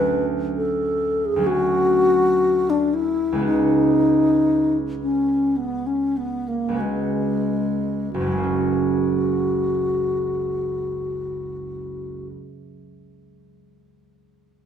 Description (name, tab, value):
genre	classical, impressionist duo for alto flute and harp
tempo	42-66 BPM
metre	4/4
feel	rubato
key	unclear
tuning	A4 = 440 Hz
part	mellow hollow alto flute	melody	0.0-12.3 s	G#3 to B4	-20 LUFS	left 2 dB	none
part	concert harp	accompaniment	0.0-12.6 s	F#1 to F#4	-25 LUFS	right 4 dB	none
room	wet stone room reverb, RT60 1.1 s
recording	minimal, uncompressed stereo recording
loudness	-19 LUFS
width	side -8 dB against mid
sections	0.0-8.2 A section; 8.2-13.3 B section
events	slowing down 0.0-8.2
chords	0.0 Dmaj7; 3.4 C#9sus4; 8.2 F#add9